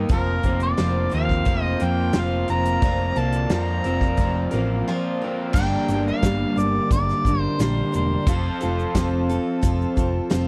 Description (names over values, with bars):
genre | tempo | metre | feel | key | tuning
folk rock and heartland rock | 88 BPM | 4/4 | straight | unclear | A4 = 440 Hz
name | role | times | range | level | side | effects
picked steel-string acoustic guitar | accompaniment | 0.0-10.5 s | G2 to Bb4 | -30 LUFS | equal | none
crunchy overdriven guitar | riff | 0.0-10.5 s | F2 to Bb4 | -29 LUFS | equal | none
hollow-body short-scale picked electric bass | bass | 0.0-10.5 s | E1 to F2 | -27 LUFS | equal | none
mellow harmonica | melody | 0.1-9.3 s | Bb4 to Bb5 | -29 LUFS | equal | none
pedal harmonium | sustained chords | 0.1-10.5 s | F4 to C6 | -37 LUFS | equal | none
natural country drum kit | drums | 0.1-10.5 s | crash cymbal, hi-hat, kick drum, snare drum | -26 LUFS | equal | none
tube shaker | percussion | 5.6-10.5 s | none | -48 LUFS | equal | none
room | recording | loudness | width
little or no reverb | dry, close 1970s-style studio recording | -22 LUFS | mono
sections
0.0-5.6 A section; 5.6-10.5 B section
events
break 4.9-5.6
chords
0.1 Fsus4; 5.6 Gm; 8.3 F